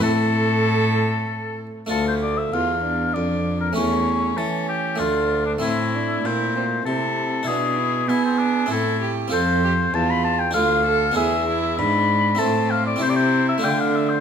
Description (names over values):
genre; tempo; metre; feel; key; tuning
classical, baroque-style sonata movement with continuo; 97 BPM; 3/4; straight; D minor; A4 = 441 Hz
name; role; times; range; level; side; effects
clear oboe; melody; 0.0-14.2 s; C4 to B5; -23 LUFS; left 6 dB; none
rich violin; second line; 0.0-14.2 s; C4 to A4; -27 LUFS; right 7 dB; none
harpsichord; accompaniment; 0.0-14.2 s; D2 to A4; -24 LUFS; equal; none
rich cello; bass; 0.0-14.2 s; D2 to B3; -24 LUFS; right 2 dB; none
room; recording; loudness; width
moderate recital hall reverb, RT60 1.4 s; none; -18 LUFS; side -7 dB against mid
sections
0.0-1.9 A section; 1.9-14.2 A section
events
none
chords
0.0 Am; 1.9 Dm; 3.8 A7/E; 5.0 Dm; 5.6 Am; 7.5 E7/B; 8.7 Am; 9.3 F; 10.6 Dm; 11.2 E7; 12.4 Am; 13.0 C; 13.6 Dm